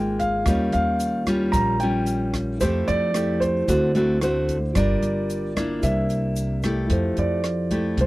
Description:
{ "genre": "bossa nova", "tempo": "112 BPM", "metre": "4/4", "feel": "straight", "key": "F major", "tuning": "A4 = 441 Hz", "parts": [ { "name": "dark grand piano", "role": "melody", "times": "0.0-8.1 s", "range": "C5 to Bb5", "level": "-26 LUFS", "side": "right 1 dB", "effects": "none" }, { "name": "mellow tine electric piano", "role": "accompaniment", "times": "0.0-8.1 s", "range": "E4 to Eb5", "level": "-32 LUFS", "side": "right 1 dB", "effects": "none" }, { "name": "nylon-string guitar", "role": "accompaniment", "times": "0.0-8.1 s", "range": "Ab2 to Bb4", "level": "-24 LUFS", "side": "equal", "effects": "none" }, { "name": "upright bass", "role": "bass", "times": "0.0-8.1 s", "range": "G1 to F2", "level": "-26 LUFS", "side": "equal", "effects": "none" }, { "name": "compact cocktail drum kit", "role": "drums", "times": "0.2-8.1 s", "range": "hi-hat, kick drum, rim click", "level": "-29 LUFS", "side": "equal", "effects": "none" }, { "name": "tube shaker", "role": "percussion", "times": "0.2-6.9 s", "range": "none", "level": "-43 LUFS", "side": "left 6 dB", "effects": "none" } ], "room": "light reverb", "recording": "dry, close 1970s-style studio recording", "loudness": "-20 LUFS", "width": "side -18 dB against mid", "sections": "0.0-6.9 A section; 6.9-8.1 B section", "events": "grand piano solo 6.9-8.1", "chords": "0.5 Eb9; 2.6 Fmaj9; 3.7 D7; 4.8 Gm7; 5.8 C9; 6.9 Fmaj9", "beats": "| 0.46 1.00 1.53 2.07 | 2.61 3.15 3.68 4.22 | 4.75 5.29 5.83 6.37 | 6.90 7.44 7.97" }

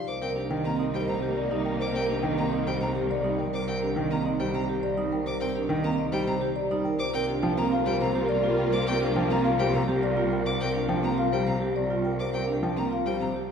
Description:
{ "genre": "classical, minimalist pattern music", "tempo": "104 BPM", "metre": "3/4", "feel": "straight", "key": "C minor", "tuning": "A4 = 439 Hz", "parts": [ { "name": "marimba with soft mallets", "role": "melody", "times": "0.0-13.5 s", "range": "G4 to G5", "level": "-31 LUFS", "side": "left 5 dB", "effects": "none" }, { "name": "clear violin", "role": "arpeggios", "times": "0.0-13.3 s", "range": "G5 to D6", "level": "-36 LUFS", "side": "left 2 dB", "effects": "none" }, { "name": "mellow French horn", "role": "second line", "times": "0.1-3.3, 7.0-10.2 s", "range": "Bb4", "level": "-35 LUFS", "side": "right 1 dB", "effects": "none" }, { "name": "warm symphonic string section", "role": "sustained chords", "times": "0.1-3.4, 7.0-10.3 s", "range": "Bb3 to F4", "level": "-38 LUFS", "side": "left 1 dB", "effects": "none" }, { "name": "rich cello", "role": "bass", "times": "0.1-13.5 s", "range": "C2", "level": "-32 LUFS", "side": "right 1 dB", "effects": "none" }, { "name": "warm grand piano", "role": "accompaniment", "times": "0.2-13.4 s", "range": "C3 to C4", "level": "-31 LUFS", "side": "equal", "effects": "none" }, { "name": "vibraphone with medium mallets", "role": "arpeggios", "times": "0.2-13.5 s", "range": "C4 to C5", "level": "-30 LUFS", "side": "right 4 dB", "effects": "none" } ], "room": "wet cathedral reverb, RT60 6.1 s", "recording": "recorded in a church or concert hall", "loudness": "-24 LUFS", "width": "side -7 dB against mid", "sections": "0.1-13.5 A section", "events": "none", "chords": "0.1 Cm7; 7.0 Gm7/C", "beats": "| 0.07 0.65 1.23 | 1.80 2.38 2.96 | 3.54 4.11 4.69 | 5.27 5.84 6.42 | 7.00 7.58 8.15 | 8.73 9.30 9.88 | 10.46 11.04 11.61 | 12.19 12.77 13.34" }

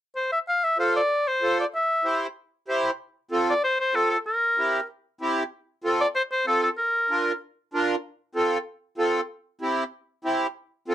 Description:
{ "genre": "latin", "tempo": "190 BPM", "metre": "4/4", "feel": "straight", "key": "F major", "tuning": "A4 = 440 Hz", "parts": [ { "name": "clear oboe", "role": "melody", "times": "0.2-7.4 s", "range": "A4 to F5", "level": "-22 LUFS", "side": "left 1 dB", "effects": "none" }, { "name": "accordion", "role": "accompaniment", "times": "0.8-10.9 s", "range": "C4 to C5", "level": "-24 LUFS", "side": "right 1 dB", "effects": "none" } ], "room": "light reverb", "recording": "close, detailed microphones", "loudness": "-23 LUFS", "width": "side -12 dB against mid", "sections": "0.5-3.0 A section; 3.0-10.9 B section", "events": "none", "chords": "0.5 F; 1.7 C; 3.0 F; 4.3 C7; 5.5 F; 6.8 Bb; 8.0 F; 9.3 C", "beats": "0.16 | 0.48 0.79 1.11 1.42 | 1.74 2.06 2.37 2.69 | 3.00 3.32 3.63 3.95 | 4.26 4.58 4.89 5.21 | 5.53 5.84 6.16 6.47 | 6.79 7.10 7.42 7.73 | 8.05 8.36 8.68 8.99 | 9.30 9.62 9.93 10.25 | 10.56 10.88" }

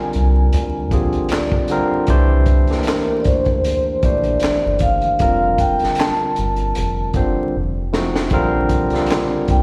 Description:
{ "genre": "R&B, neo-soul", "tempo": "77 BPM", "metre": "4/4", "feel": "swing 56% on 16ths", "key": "Bb major", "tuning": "A4 = 439 Hz", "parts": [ { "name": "vibraphone with soft mallets", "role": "melody", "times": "0.0-9.6 s", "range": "Bb4 to A5", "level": "-22 LUFS", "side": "equal", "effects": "none" }, { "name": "barky tine electric piano", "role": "accompaniment", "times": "0.0-9.6 s", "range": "Db3 to Bb5", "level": "-23 LUFS", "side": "equal", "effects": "overdrive, slapback echo" }, { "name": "crunchy breakbeat drum kit", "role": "drums", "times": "0.1-9.6 s", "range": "handclaps, hi-hat, kick drum, snare drum", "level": "-24 LUFS", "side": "equal", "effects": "none" }, { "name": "rubbery square bass", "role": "bass", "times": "0.2-9.6 s", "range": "F1 to D2", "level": "-21 LUFS", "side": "equal", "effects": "none" } ], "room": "light reverb, small room ambience", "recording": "live gig heard through the venue's PA, recital hall reverb, vinyl crackle", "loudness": "-18 LUFS", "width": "mono", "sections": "0.0-9.6 A section", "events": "tine electric piano fill 0.9-2.1; drum fill 7.5-8.3", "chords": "0.0 Bb9; 2.1 C13; 5.2 Fsus24; 7.5 F7b9; 8.3 Bbmaj9", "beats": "0.52 1.30 | 2.08 2.86 3.64 4.42 | 5.20 5.98 6.75 7.54 | 8.31 9.09" }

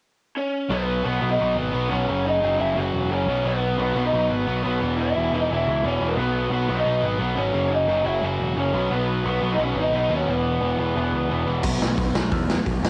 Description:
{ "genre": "punk rock", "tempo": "176 BPM", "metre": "4/4", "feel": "straight", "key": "B major", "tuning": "A4 = 440 Hz", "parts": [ { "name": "lead guitar through a small cranked amp", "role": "melody", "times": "0.4-11.5 s", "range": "B3 to F#5", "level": "-27 LUFS", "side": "equal", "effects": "overdrive, cassette tape" }, { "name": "crunchy overdriven guitar", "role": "riff", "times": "0.7-12.1 s", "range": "E2 to B3", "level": "-29 LUFS", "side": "equal", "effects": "cassette tape" }, { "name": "distorted electric guitar", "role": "riff", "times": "0.7-12.9 s", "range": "E2 to B3", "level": "-32 LUFS", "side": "equal", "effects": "distortion, cassette tape" }, { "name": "growling picked electric bass", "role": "bass", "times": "0.7-12.9 s", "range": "E1 to E2", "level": "-29 LUFS", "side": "equal", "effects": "overdrive" }, { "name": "raw garage drum kit", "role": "drums", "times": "11.6-12.9 s", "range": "crash cymbal, hi-hat, kick drum, snare drum", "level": "-25 LUFS", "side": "equal", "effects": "none" } ], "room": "small room ambience", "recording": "home recording on cassette", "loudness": "-23 LUFS", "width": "mono", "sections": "0.7-11.6 A section; 11.6-12.9 B section", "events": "none", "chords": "0.0 N.C.; 0.7 B; 2.1 F#5; 3.3 B; 4.8 E5; 6.2 B; 7.5 F#5; 8.7 B; 10.3 E5; 11.6 B5", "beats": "0.02 0.36 | 0.70 1.05 1.39 1.73 | 2.08 2.42 2.76 3.10 | 3.45 3.79 4.13 4.47 | 4.81 5.16 5.50 5.84 | 6.18 6.52 6.86 7.20 | 7.54 7.88 8.23 8.57 | 8.91 9.25 9.59 9.93 | 10.27 10.61 10.95 11.29 | 11.63 11.97 12.31 12.65" }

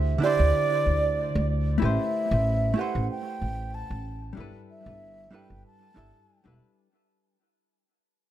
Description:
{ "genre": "sunset chillout", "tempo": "94 BPM", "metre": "4/4", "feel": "swing 54% on 16ths", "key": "unclear", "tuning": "A4 = 438 Hz", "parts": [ { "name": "hollow-body jazz guitar", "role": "accompaniment", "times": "0.0-6.9 s", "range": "D3 to E5", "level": "-30 LUFS", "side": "moving between left 5 dB and right 4 dB", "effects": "auto-pan, tape echo" }, { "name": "upright bass", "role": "bass", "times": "0.0-6.6 s", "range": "E1 to D2", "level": "-26 LUFS", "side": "equal", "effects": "tube saturation" }, { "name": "mellow baroque flute", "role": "melody", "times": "0.2-6.6 s", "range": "D5 to A5", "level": "-28 LUFS", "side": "right 2 dB", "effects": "tape echo" } ], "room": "light reverb", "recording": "echo-heavy mix", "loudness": "-23 LUFS", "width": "side -12 dB against mid", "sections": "0.0-6.9 A section", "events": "fade-out 0.0-6.9", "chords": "0.0 D7sus4; 1.8 Am9; 4.4 G69", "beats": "0.54 1.18 | 1.81 2.45 3.09 3.73 | 4.37 5.01 5.64 6.28" }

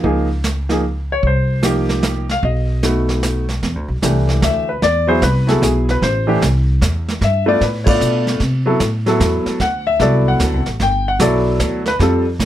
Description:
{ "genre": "jazz piano trio", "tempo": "150 BPM", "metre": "3/4", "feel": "swing 65% on 8ths", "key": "E minor from 3.6 s", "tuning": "A4 = 440 Hz", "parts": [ { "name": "clear concert grand piano", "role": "melody", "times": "0.0-12.2 s", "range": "E3 to G5", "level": "-17 LUFS", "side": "left 1 dB", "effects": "none" }, { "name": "upright bass", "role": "bass", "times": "0.0-12.5 s", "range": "G1 to C3", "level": "-18 LUFS", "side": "equal", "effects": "none" }, { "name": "vintage brush drum kit", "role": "drums", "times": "0.0-12.5 s", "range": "brushed snare drum, hi-hat, kick drum, ride cymbal, snare drum", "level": "-21 LUFS", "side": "right 2 dB", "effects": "none" } ], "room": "light reverb", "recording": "faint mains hum", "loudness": "-14 LUFS", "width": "side -12 dB against mid", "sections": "0.0-3.6 A section; 3.6-12.5 B section", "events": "band accent 7.8", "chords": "0.0 Db; 1.2 Cm7; 2.4 B7; 3.6 Em7; 4.8 E; 6.0 Am; 7.2 G7; 8.4 C6; 9.6 D7; 10.8 Gmaj9", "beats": "| 0.04 0.43 0.83 | 1.23 1.63 2.03 | 2.43 2.83 3.23 | 3.63 4.03 4.42 | 4.82 5.22 5.62 | 6.02 6.42 6.82 | 7.21 7.61 8.01 | 8.41 8.81 9.21 | 9.61 10.00 10.40 | 10.80 11.20 11.60 | 11.99 12.39" }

